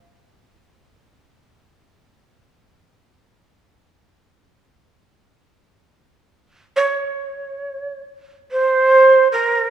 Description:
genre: japanese traditional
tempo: free time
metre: none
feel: none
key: unclear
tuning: A4 = 440 Hz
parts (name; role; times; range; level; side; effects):
- breathy shakuhachi; melody; 6.8-9.7 s; Bb4 to Db5; -14 LUFS; right 2 dB; none
room: moderate concert hall reverb, RT60 1.9 s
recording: dark, warm production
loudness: -14 LUFS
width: side -10 dB against mid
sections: 0.0-6.8 A section; 6.8-9.7 B section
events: none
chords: none

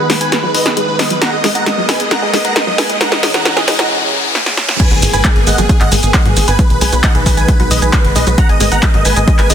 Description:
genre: uplifting trance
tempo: 134 BPM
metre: 4/4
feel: straight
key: G# minor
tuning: A4 = 440 Hz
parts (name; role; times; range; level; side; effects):
- big supersaw lead; melody; 0.0-9.5 s; G#4 to A#5; -17 LUFS; right 1 dB; cassette tape, sidechain pumping, low-pass filter, tape echo
- lush unison pad; sustained chords; 0.0-9.5 s; D#3 to C#4; -22 LUFS; equal; chorus, sidechain pumping
- tight sequenced synth; arpeggios; 0.0-9.5 s; F#3 to G#4; -23 LUFS; equal; chorus, phaser, sidechain pumping, tape echo
- tight sequencer bass; bass; 0.0-9.5 s; F#1 to G#2; -17 LUFS; equal; sidechain pumping, high-pass filter
- riser and impact; sound effects; 0.0-6.6 s; none; -21 LUFS; left 1 dB; none
- punchy analog drum machine; drums; 0.1-9.5 s; crash cymbal, handclaps, hi-hat, shaker, snare drum; -16 LUFS; equal; overdrive
- electronic kick drum; drums; 4.8-9.4 s; none; -12 LUFS; equal; overdrive
room: light reverb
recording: dense, heavily limited modern master, high-pass filter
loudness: -10 LUFS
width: side -9 dB against mid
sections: 0.0-4.8 A section; 4.8-9.5 B section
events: build-up 0.0-4.8; drum fill 0.0-3.9, 4.4-4.8; riser 0.0-4.8; filter sweep on synth arpeggio sound 0.0-4.8; filter sweep 0.0-4.8; break 3.9-4.8; drop 4.8-9.5; impact 4.8-6.6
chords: 0.0 B6; 1.2 G#madd9; 3.0 C#m; 4.8 G#madd9; 6.6 B6; 8.4 G#madd9

